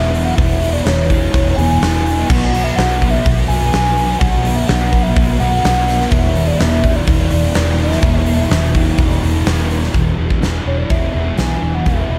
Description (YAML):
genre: rock, shoegaze and dream pop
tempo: 125 BPM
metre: 4/4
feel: straight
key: E mixolydian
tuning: A4 = 438 Hz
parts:
  - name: hollow clarinet-like synth lead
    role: melody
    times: 0.0-12.2 s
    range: C#5 to G#5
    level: -23 LUFS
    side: equal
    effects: chorus, analog delay
  - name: thick fuzz guitar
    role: riff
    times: 0.0-12.2 s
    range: E2 to B3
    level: -21 LUFS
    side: equal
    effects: distortion, analog chorus
  - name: vintage muted fingered electric bass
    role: bass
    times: 0.0-12.2 s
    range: E1 to B1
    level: -20 LUFS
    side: equal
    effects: none
  - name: huge arena drum kit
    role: drums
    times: 0.1-12.0 s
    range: crash cymbal, hi-hat, kick drum, snare drum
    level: -20 LUFS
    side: equal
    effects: none
room: moderate lush hall reverb, RT60 1.8 s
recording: dreamy mix soaked in reverb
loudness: -15 LUFS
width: mono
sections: 0.0-9.9 A section; 9.9-12.2 B section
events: none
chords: 0.0 E; 2.3 B5; 6.1 E5